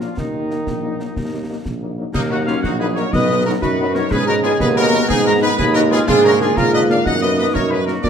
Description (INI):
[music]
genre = military-style march for wind band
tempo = 122 BPM (dotted quarters)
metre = 6/8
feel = straight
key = Eb minor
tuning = A4 = 439 Hz
[part]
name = clear trumpet section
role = melody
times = 0.0-8.1 s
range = Eb4 to Gb5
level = -23 LUFS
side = left 1 dB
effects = none
[part]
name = clear woodwind section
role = second line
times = 0.0-8.1 s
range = Bb3 to Eb5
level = -25 LUFS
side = left 2 dB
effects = none
[part]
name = warm euphonium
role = second line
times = 0.0-8.1 s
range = Eb3 to Ab4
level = -22 LUFS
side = right 2 dB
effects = none
[part]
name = warm French horn section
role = accompaniment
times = 0.0-7.9 s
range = F3 to Eb4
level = -26 LUFS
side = left 4 dB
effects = none
[part]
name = clear tuba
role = bass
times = 0.0-8.1 s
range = Bb1 to Bb2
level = -20 LUFS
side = right 1 dB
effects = none
[part]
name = concert snare drum, concert bass drum and clash cymbals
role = drums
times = 0.0-8.1 s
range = none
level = -25 LUFS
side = left 1 dB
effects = none
[part]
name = mellow piccolo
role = second line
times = 2.1-8.1 s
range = Eb5 to Gb6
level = -25 LUFS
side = left 3 dB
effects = none
[part]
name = mellow trombone section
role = sustained chords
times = 2.1-8.1 s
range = D3 to Bb3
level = -24 LUFS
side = right 2 dB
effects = none
[sound]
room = wet large studio reverb, RT60 1.3 s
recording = dark, warm production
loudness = -15 LUFS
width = side -7 dB against mid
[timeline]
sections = 0.0-2.1 A section; 2.1-8.1 A section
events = none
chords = 0.2 Ebm; 3.1 B; 4.1 Abm; 6.1 Bb7/Ab; 7.1 Ebm/Gb